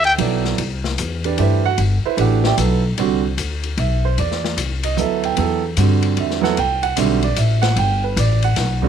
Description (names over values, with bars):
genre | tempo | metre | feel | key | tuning
modal jazz | 150 BPM | 3/4 | swing 65% on 8ths | C lydian | A4 = 440 Hz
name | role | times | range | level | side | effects
upright bass | bass | 0.0-8.9 s | G1 to G2 | -19 LUFS | left 2 dB | none
open jazz drum kit | drums | 0.0-8.9 s | hi-hat, kick drum, ride cymbal, snare drum | -26 LUFS | left 10 dB | none
warm concert grand piano | accompaniment | 0.2-8.9 s | D3 to G5 | -19 LUFS | right 12 dB | none
room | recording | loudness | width
light reverb, small room reverb | 1960s-style stereo with parts hard left and right | -16 LUFS | side -8 dB against mid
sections
0.6-8.9 A section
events
none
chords
0.0 Cmaj9 (rootless); 0.6 Cmaj9